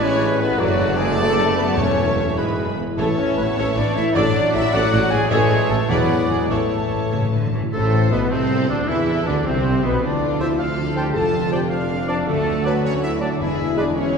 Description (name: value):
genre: classical, dramatic, fast romantic movement for symphony orchestra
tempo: 97-108 BPM (dotted quarters)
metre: 6/8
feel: rubato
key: A major, A minor from 7.7 s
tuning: A4 = 440 Hz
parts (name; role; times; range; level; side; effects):
- warm symphonic violin section; melody; 0.0-14.2 s; A3 to A5; -32 LUFS; left 4 dB; none
- clear oboe; second line; 0.0-13.8 s; B3 to D5; -30 LUFS; right 2 dB; none
- concert flute; second line; 0.0-13.9 s; C4 to B5; -28 LUFS; equal; none
- warm symphonic violin section; second line; 0.0-14.2 s; D4 to B5; -32 LUFS; left 3 dB; none
- dark bassoon; accompaniment; 0.0-13.8 s; A2 to A3; -29 LUFS; right 2 dB; none
- rich symphonic viola section; accompaniment; 0.0-14.2 s; A3 to F#5; -31 LUFS; right 2 dB; none
- bright trombone section; sustained chords; 0.0-14.2 s; A2 to D4; -31 LUFS; right 3 dB; none
- dark French horn section; sustained chords; 0.0-14.2 s; F#3 to A4; -24 LUFS; left 3 dB; none
- concert harp; arpeggios; 0.0-14.2 s; E2 to F5; -27 LUFS; left 5 dB; none
- bright trumpet section; stabs; 0.0-14.2 s; A4 to A5; -29 LUFS; right 2 dB; none
- rich symphonic cello section; bass; 0.0-14.2 s; D2 to E3; -28 LUFS; right 2 dB; none
- rich symphonic double bass section; bass; 0.0-14.2 s; E1 to E2; -27 LUFS; right 3 dB; none
- warm tuba; bass; 0.0-14.2 s; E1 to E2; -27 LUFS; right 3 dB; none
- timpani; percussion; 1.8-7.7, 13.4-13.9 s; E2 to A2; -27 LUFS; left 3 dB; none
room: wet concert hall reverb, RT60 1.9 s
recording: heard from further back in the room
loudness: -17 LUFS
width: side -5 dB against mid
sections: 0.0-7.7 A section; 7.7-14.2 B section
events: timpani fill 6.5-7.7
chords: 0.0 E/A; 0.6 D/F#; 1.8 A/E; 2.4 E; 3.0 A; 4.2 D/A; 5.3 A; 5.9 E9; 6.5 A; 7.7 Am; 10.0 Dm7; 11.1 Dm/F; 12.3 D; 13.4 E